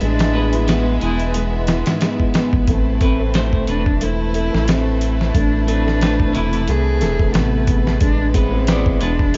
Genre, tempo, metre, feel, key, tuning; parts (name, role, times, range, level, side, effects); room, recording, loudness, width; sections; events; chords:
trip hop; 90 BPM; 4/4; swing 56% on 16ths; A harmonic minor; A4 = 440 Hz
dark cello; melody; 0.0-9.4 s; B3 to G#4; -25 LUFS; equal; dub echo
bright symphonic violin section; sustained chords; 0.0-9.4 s; G#3 to E5; -31 LUFS; equal
felt-muted upright piano; arpeggios; 0.0-9.4 s; G#2 to B4; -27 LUFS; equal; vintage 12-bit sampler grit, dub echo
round analog bass; bass; 0.0-9.4 s; E1 to C2; -22 LUFS; equal
dusty soul sampler-style drum kit; drums; 0.0-9.4 s; hi-hat, kick drum, snare drum; -21 LUFS; equal
clean electric guitar; accompaniment; 0.3-9.2 s; C3 to D5; -28 LUFS; equal; tremolo, tape echo
small room ambience; echo-heavy mix, vinyl crackle, nothing above 7.6 kHz; -17 LUFS; mono
0.0-9.4 A section
0.0 E; 2.7 Amadd9; 8.0 E